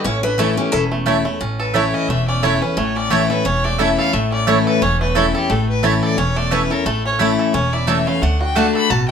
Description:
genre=bluegrass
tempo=176 BPM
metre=4/4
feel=swing 55% on 8ths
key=A major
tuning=A4 = 440 Hz
part: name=bluegrass banjo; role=melody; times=0.0-9.1 s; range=A3 to A4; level=-25 LUFS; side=right 2 dB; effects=none
part: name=picked steel-string acoustic guitar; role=melody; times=0.0-0.8 s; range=G4 to C#5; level=-21 LUFS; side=left 3 dB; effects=none
part: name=clear fiddle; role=second line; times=0.0-9.1 s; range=B3 to B5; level=-22 LUFS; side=left 1 dB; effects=none
part: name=picked steel-string acoustic guitar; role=accompaniment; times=0.0-9.1 s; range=E2 to F#4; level=-19 LUFS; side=left 3 dB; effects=none
part: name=upright bass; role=bass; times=0.0-9.1 s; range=E1 to D2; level=-22 LUFS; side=equal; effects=none
part: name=mandolin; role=stabs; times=0.4-8.7 s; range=A3 to A5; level=-20 LUFS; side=right 6 dB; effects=none
room=moderate small room reverb, RT60 0.5 s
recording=minimal, uncompressed stereo recording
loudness=-15 LUFS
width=side -7 dB against mid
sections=0.0-1.4 A section; 1.4-9.1 B section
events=fiddle solo 1.4-9.1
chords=0.0 A; 8.2 D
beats=| 0.05 0.39 0.73 1.07 | 1.41 1.75 2.09 2.43 | 2.77 3.11 3.45 3.79 | 4.13 4.47 4.82 5.16 | 5.50 5.84 6.18 6.52 | 6.86 7.20 7.54 7.88 | 8.22 8.56 8.90

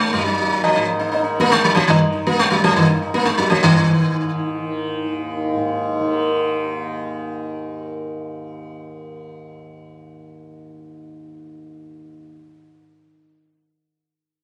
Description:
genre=indian classical, Hindustani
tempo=121 BPM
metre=5/4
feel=straight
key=unclear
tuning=A4 = 439 Hz
part: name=sitar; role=melody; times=0.0-7.0 s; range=Eb3 to Eb4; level=-20 LUFS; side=equal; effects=none
part: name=tanpura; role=drone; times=0.0-13.1 s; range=Eb2 to Eb3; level=-28 LUFS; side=equal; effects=none
part: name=tabla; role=percussion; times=0.1-3.8 s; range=none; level=-24 LUFS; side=equal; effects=none
room=moderate recital hall reverb, RT60 1.6 s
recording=recorded on a phone in the room, club ambience, compression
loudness=-19 LUFS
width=mono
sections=0.0-3.6 A section; 3.6-6.1 B section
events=none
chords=none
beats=0.14 0.64 | 1.15 1.65 2.15 2.64 3.14 | 3.64 4.14 4.63 5.13 5.62

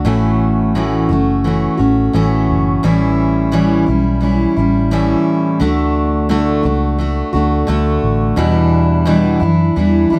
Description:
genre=acoustic pop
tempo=87 BPM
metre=4/4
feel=swing 60% on 16ths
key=A mixolydian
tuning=A4 = 440 Hz
part: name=picked steel-string acoustic guitar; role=accompaniment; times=0.0-10.2 s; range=E2 to F#4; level=-16 LUFS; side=equal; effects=none
part: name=vintage muted fingered electric bass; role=bass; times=0.0-10.1 s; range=F#1 to F#2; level=-20 LUFS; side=equal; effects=none
room=light reverb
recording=close, detailed microphones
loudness=-15 LUFS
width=mono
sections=0.1-10.2 A section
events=none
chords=0.1 A6; 2.8 A7; 5.6 D; 8.4 Em7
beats=| 0.06 0.75 1.45 2.14 | 2.83 3.53 4.22 4.91 | 5.61 6.30 6.99 7.68 | 8.38 9.07 9.76

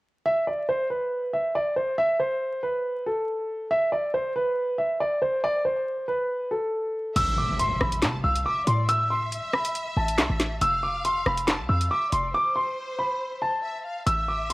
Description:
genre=hip hop, drill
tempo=139 BPM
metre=4/4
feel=half-time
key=A minor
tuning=A4 = 440 Hz
part: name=dark grand piano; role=melody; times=0.3-14.5 s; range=A4 to E6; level=-24 LUFS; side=equal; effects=cassette tape
part: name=warm studio violin section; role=second line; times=7.2-14.5 s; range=C5 to A5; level=-35 LUFS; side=equal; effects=tape echo
part: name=short 808-style bass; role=bass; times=7.2-14.5 s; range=F1 to C3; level=-28 LUFS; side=equal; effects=none
part: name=drill drum kit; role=drums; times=7.2-14.5 s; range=crash cymbal, handclaps, hi-hat, rim click, snare drum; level=-26 LUFS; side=equal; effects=cassette tape
part: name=impact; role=sound effects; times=7.2-8.9 s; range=none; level=-34 LUFS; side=equal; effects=none
room=light reverb, digital ambience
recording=home recording on cassette, vinyl crackle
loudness=-23 LUFS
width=side -20 dB against mid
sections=0.3-7.2 A section; 7.2-14.5 B section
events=impact 7.2-8.9; break 12.3-14.1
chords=0.3 N.C.; 7.2 Amadd9; 10.6 F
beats=| 0.25 0.69 1.12 1.55 | 1.98 2.41 2.84 3.27 | 3.71 4.14 4.57 5.00 | 5.43 5.87 6.30 6.73 | 7.16 7.59 8.02 8.46 | 8.89 9.32 9.75 10.18 | 10.61 11.04 11.48 11.91 | 12.34 12.77 13.20 13.63 | 14.07 14.50

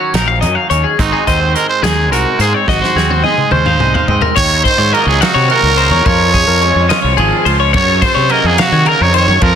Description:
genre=math rock and midwest emo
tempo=71 BPM (dotted quarters)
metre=6/8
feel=straight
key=Gb lydian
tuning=A4 = 440 Hz
part: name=growling trumpet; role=melody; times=0.0-9.6 s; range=Eb4 to Db5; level=-14 LUFS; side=right 4 dB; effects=slapback echo, plate reverb
part: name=twangy electric guitar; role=accompaniment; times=0.0-9.6 s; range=Gb2 to Ab4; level=-19 LUFS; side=right 9 dB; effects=phaser, plate reverb
part: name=twelve-string electric guitar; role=arpeggios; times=0.0-9.6 s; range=Ab4 to F5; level=-16 LUFS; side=left 9 dB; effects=plate reverb
part: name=fuzz fingered electric bass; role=bass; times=0.1-9.6 s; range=Ab1 to Eb3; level=-15 LUFS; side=equal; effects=overdrive
part: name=loose indie drum kit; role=drums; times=0.1-9.5 s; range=crash cymbal, hi-hat, kick drum, ride cymbal, snare drum, toms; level=-17 LUFS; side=equal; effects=soft clipping on snare
room=light reverb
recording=dense, heavily limited modern master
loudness=-9 LUFS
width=side -8 dB against mid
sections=0.0-4.4 A section; 4.4-9.6 B section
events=drum fill 2.7-4.4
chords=0.0 Ebm7; 1.0 Ab7; 4.4 Ebm7; 6.1 Db/F; 7.7 Gbmaj7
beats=0.14 | 0.99 1.84 | 2.68 3.53 | 4.37 5.22 | 6.06 6.90 | 7.74 8.58 | 9.41

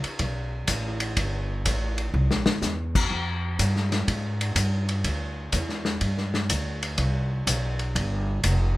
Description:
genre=jazz, big band swing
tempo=124 BPM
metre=4/4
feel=swing 67% on 8ths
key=C major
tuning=A4 = 439 Hz
part: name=upright bass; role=bass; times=0.0-8.8 s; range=F1 to Ab2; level=-26 LUFS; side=equal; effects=none
part: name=vintage drum kit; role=drums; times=0.0-8.6 s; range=crash cymbal, hi-hat, kick drum, ride cymbal, snare drum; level=-27 LUFS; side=left 1 dB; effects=none
room=little or no reverb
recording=none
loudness=-24 LUFS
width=side -18 dB against mid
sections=0.0-8.8 A section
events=drum fill 2.1-2.6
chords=none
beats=0.20 0.68 | 1.17 1.65 2.14 2.62 | 3.11 3.59 4.08 4.56 | 5.05 5.53 6.02 6.50 | 6.99 7.47 7.96 8.44

